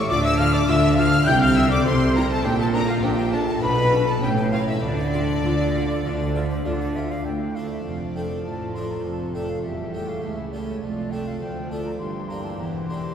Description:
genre	classical, baroque-style concerto movement with solo episodes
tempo	101 BPM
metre	4/4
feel	straight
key	D minor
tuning	A4 = 439 Hz
part	bright symphonic violin section	melody	0.0-13.1 s	A4 to G6	-33 LUFS	left 2 dB	none
part	concert flute	melody	0.0-13.1 s	C5 to G6	-28 LUFS	left 1 dB	none
part	harpsichord	accompaniment	0.0-13.1 s	C#2 to E5	-32 LUFS	equal	none
part	rich chamber double bass section	bass	0.0-13.1 s	E1 to D2	-27 LUFS	right 1 dB	none
part	warm symphonic violin section	second line	0.1-13.1 s	D4 to G5	-29 LUFS	left 2 dB	none
part	rich studio viola section	accompaniment	0.1-13.1 s	E3 to F4	-32 LUFS	right 1 dB	none
part	rich studio cello section	bass	0.1-13.1 s	C#2 to D3	-24 LUFS	equal	none
room	wet church reverb, RT60 3.2 s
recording	heard from further back in the room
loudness	-20 LUFS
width	side -8 dB against mid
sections	0.0-7.3 A section; 7.3-13.1 B section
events	none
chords	0.1 Dm; 1.3 Am/C; 2.4 Bbmaj13; 3.6 Bm7; 4.2 A7; 4.8 Dm; 9.6 A7/E; 10.8 Dm/F; 12.0 Gm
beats	| 0.09 0.68 1.27 1.85 | 2.44 3.03 3.62 4.22 | 4.83 5.44 6.05 6.65 | 7.26 7.85 8.45 9.05 | 9.64 10.23 10.82 11.41 | 12.00 12.59

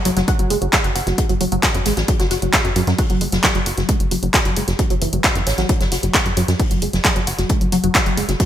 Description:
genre	driving peak-time techno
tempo	133 BPM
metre	4/4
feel	straight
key	F# minor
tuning	A4 = 440 Hz
part	tight sequenced synth	riff	0.1-8.4 s	E3 to F#4	-22 LUFS	equal	chorus, phaser, sidechain pumping, digital delay
part	tight sequencer bass	bass	0.1-8.4 s	F#1 to F#2	-22 LUFS	equal	sidechain pumping
part	loose indie drum kit	drums	0.1-8.5 s	hi-hat, snare drum	-27 LUFS	left 1 dB	sidechain pumping on hats, high-pass filter on hats, high-pass filter on snare, high-pass filter on room, gated reverb
part	punchy analog drum machine	drums	0.1-8.5 s	handclaps, hi-hat	-20 LUFS	equal	gated reverb
part	electronic kick drum	drums	0.3-8.5 s	none	-20 LUFS	equal	none
room	light reverb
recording	bright 1980s-style digital production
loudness	-15 LUFS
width	side -11 dB against mid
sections	0.0-8.5 A section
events	none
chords	0.0 F#5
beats	| 0.28 0.73 1.18 1.63 | 2.08 2.54 2.99 3.44 | 3.89 4.34 4.79 5.24 | 5.69 6.14 6.59 7.05 | 7.50 7.95 8.40

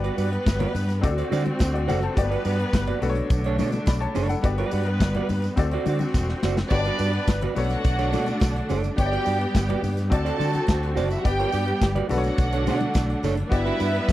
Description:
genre	disco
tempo	106 BPM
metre	4/4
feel	straight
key	unclear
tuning	A4 = 440 Hz
part	clear grand piano	accompaniment	0.0-14.1 s	A3 to B5	-31 LUFS	left 5 dB	none
part	semi-hollow electric guitar	accompaniment	0.0-14.1 s	D4 to D5	-29 LUFS	right 7 dB	none
part	clear studio string section	sustained chords	0.0-14.1 s	D3 to B4	-29 LUFS	equal	none
part	fingered electric bass	bass	0.0-14.1 s	E1 to D3	-26 LUFS	equal	none
part	modern studio drum kit	drums	0.0-14.1 s	crash cymbal, hi-hat, kick drum, snare drum	-22 LUFS	equal	none
part	congas	percussion	0.2-14.1 s	none	-34 LUFS	left 5 dB	none
part	tambourine	percussion	0.2-14.1 s	none	-45 LUFS	right 8 dB	none
part	warm studio violin section	second line	6.7-14.1 s	C4 to A5	-28 LUFS	right 1 dB	none
room	little or no reverb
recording	dry, close 1970s-style studio recording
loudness	-21 LUFS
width	side -14 dB against mid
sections	0.0-14.1 A section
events	drum fill 6.1-6.7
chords	0.0 Gmaj7; 1.0 D7; 2.2 Gmaj7; 3.0 Bm9; 4.4 Gmaj7; 5.6 D7; 6.7 Gmaj7; 7.6 Bm9; 9.0 Gmaj7; 10.1 D7; 11.3 Gmaj7; 12.1 Bm9; 13.5 Gmaj7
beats	0.47 1.03 1.60 | 2.17 2.73 3.30 3.87 | 4.44 5.01 5.57 6.14 | 6.71 7.28 7.84 8.41 | 8.98 9.55 10.12 10.68 | 11.25 11.82 12.39 12.95 | 13.52 14.09

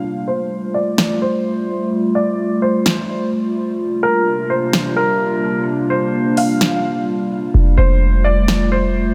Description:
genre	hip hop, atmospheric cloud-rap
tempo	128 BPM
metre	4/4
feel	half-time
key	F major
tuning	A4 = 440 Hz
part	warbly tape-like pad	sustained chords	0.0-9.1 s	C3 to F4	-21 LUFS	equal	chorus, built-in reverb, low-pass filter
part	felt-muted upright piano	melody	0.3-9.1 s	Bb4 to F5	-23 LUFS	equal	low-pass filter, delay
part	smooth R&B drum kit	drums	1.0-8.6 s	hi-hat, snare drum	-21 LUFS	equal	none
part	warm 808-style bass	bass	7.5-9.1 s	F1	-16 LUFS	equal	none
room	light reverb, digital ambience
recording	none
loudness	-17 LUFS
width	mono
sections	0.0-9.1 A section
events	break 0.0-7.5; filter sweep 0.0-9.1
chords	0.0 Fadd9; 3.8 C7sus4; 7.5 Fadd9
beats	| 0.04 0.51 0.98 1.45 | 1.92 2.39 2.86 3.32 | 3.79 4.26 4.73 5.20 | 5.67 6.14 6.61 7.07 | 7.54 8.01 8.48 8.95

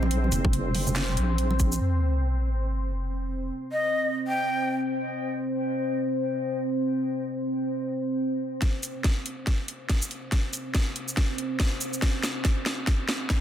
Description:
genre	deep dubstep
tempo	141 BPM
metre	4/4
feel	swing 59% on 16ths, half-time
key	unclear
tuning	A4 = 440 Hz
part	deep dark ambient pad	sustained chords	0.0-13.4 s	C4 to C5	-30 LUFS	equal	chorus, built-in reverb
part	deep soft wobble bass	bass	0.0-1.8 s	F1 to Bb1	-25 LUFS	equal	chorus
part	congas	percussion	0.0-1.6 s	none	-33 LUFS	right 2 dB	none
part	garage drum kit	drums	0.1-1.8, 8.6-13.4 s	handclaps, hi-hat, shaker, snare drum	-30 LUFS	equal	soft clipping on snare
part	electronic kick drum	drums	0.4-1.7, 8.6-13.4 s	none	-24 LUFS	equal	none
part	sub drop	sound effects	1.8-3.5 s	none	-26 LUFS	equal	none
part	breathy bright ney	melody	3.7-4.7 s	Eb5 to G5	-29 LUFS	left 1 dB	dub echo
room	moderate spring reverb, RT60 1.9 s, digital ambience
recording	dense, heavily limited modern master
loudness	-25 LUFS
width	side -10 dB against mid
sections	0.0-1.8 A section; 1.8-8.6 B section; 8.6-13.4 C section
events	drop 0.0-1.8; impact 1.8-3.5; filter sweep on ambient pad 1.8-8.6; build-up 8.6-13.4; drum fill 8.6-13.4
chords	0.0 Bbsus2; 1.8 N.C.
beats	| 0.11 0.53 0.96 1.39 | 1.81 2.24 2.66 3.09 | 3.51 3.94 4.36 4.79 | 5.21 5.64 6.07 6.49 | 6.92 7.34 7.77 8.19 | 8.62 9.04 9.47 9.89 | 10.32 10.75 11.17 11.60 | 12.02 12.45 12.87 13.30

